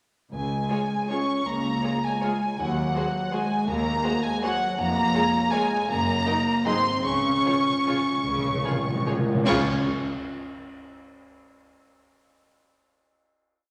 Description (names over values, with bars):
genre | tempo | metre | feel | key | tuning
classical, orchestral ballroom waltz | 142-176 BPM | 3/4 | rubato | Db major | A4 = 440 Hz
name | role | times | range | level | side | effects
rich chamber violin section | melody | 0.3-9.7 s | Gb5 to Db6 | -29 LUFS | equal | none
mellow French horn section | sustained chords | 0.3-9.6 s | Gb3 to Db4 | -30 LUFS | equal | none
warm studio cello section | bass | 0.3-9.7 s | Db2 to Db3 | -36 LUFS | equal | none
warm studio double bass section | bass | 0.3-9.7 s | F1 to Eb2 | -36 LUFS | equal | none
timpani | percussion | 0.3-0.9, 7.0-9.6 s | Db3 | -31 LUFS | equal | none
warm studio violin section | second line | 0.7-9.7 s | Ab4 to Eb5 | -38 LUFS | equal | none
warm studio viola section | accompaniment | 0.7-9.7 s | F3 to Gb4 | -36 LUFS | equal | none
cymbal swell, clash cymbals and concert bass drum | percussion | 7.0-10.2 s | none | -42 LUFS | equal | none
room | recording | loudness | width
wet scoring stage reverb, RT60 1.5 s | none | -25 LUFS | mono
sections
0.3-9.5 A section; 9.5-10.6 final chord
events
timpani fill 7.1-9.5; band accent 9.5-9.8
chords
0.3 Db; 2.6 Ab7(no3)/Eb; 4.8 Db/F (rootless); 5.9 Ebm/Gb (rootless); 6.7 Ab; 7.1 Db